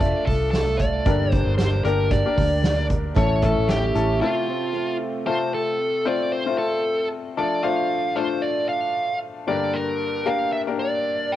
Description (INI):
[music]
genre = piano-driven pop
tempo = 114 BPM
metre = 4/4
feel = swing 56% on 16ths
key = F major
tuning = A4 = 441 Hz
[part]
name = dark smooth lead guitar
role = melody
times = 0.0-11.4 s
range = F4 to G5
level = -24 LUFS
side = right 1 dB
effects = overdrive, cassette tape
[part]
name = bright upright piano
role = accompaniment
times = 0.0-11.4 s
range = G2 to C5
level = -25 LUFS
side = left 6 dB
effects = cassette tape
[part]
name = picked steel-string acoustic guitar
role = riff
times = 0.0-5.8 s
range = A2 to Bb4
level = -30 LUFS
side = right 8 dB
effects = cassette tape
[part]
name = vintage muted fingered electric bass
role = bass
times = 0.0-4.2 s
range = F1 to D2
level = -23 LUFS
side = right 1 dB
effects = none
[part]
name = soft-mallet drum kit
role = drums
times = 0.0-4.1 s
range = hi-hat, kick drum, snare drum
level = -24 LUFS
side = right 1 dB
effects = cassette tape
[sound]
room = light reverb, studio reverb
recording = home recording on cassette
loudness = -20 LUFS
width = side -12 dB against mid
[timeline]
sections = 0.0-5.3 A section; 5.3-11.4 A section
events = break 4.2-5.3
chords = 0.0 Dm/F; 1.1 Gm; 3.2 A; 4.2 F; 7.4 Dm/F; 9.5 Gm